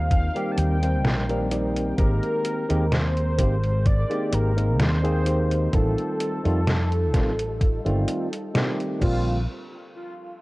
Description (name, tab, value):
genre	vaporwave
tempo	64 BPM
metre	4/4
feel	swing 53% on 16ths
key	unclear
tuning	A4 = 440 Hz
part	warm velvety synth lead	melody	0.0-9.5 s	F4 to A5	-30 LUFS	equal	chorus, tape echo
part	soft string machine	sustained chords	0.0-9.5 s	G3 to Bb4	-36 LUFS	equal	none
part	fretless electric bass	bass	0.0-9.4 s	G1 to F2	-23 LUFS	equal	ensemble chorus
part	detuned 8-bit digital drum machine	drums	0.1-9.2 s	crash cymbal, hi-hat, snare drum	-27 LUFS	equal	none
part	electronic kick drum	drums	0.1-9.2 s	none	-22 LUFS	equal	none
part	barky tine electric piano	accompaniment	0.3-9.4 s	D3 to C5	-28 LUFS	equal	lush chorus
room	light reverb, digital ambience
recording	worn, warbling old tape, cassette tape, warbly pitch drift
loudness	-21 LUFS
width	side -21 dB against mid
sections	0.0-9.5 A section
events	none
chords	0.0 Eb6; 2.0 Abmaj9; 5.7 F9/A; 9.0 Bb69; 9.5 N.C.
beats	0.11 1.05 | 1.98 2.92 3.86 4.80 | 5.73 6.67 7.61 8.55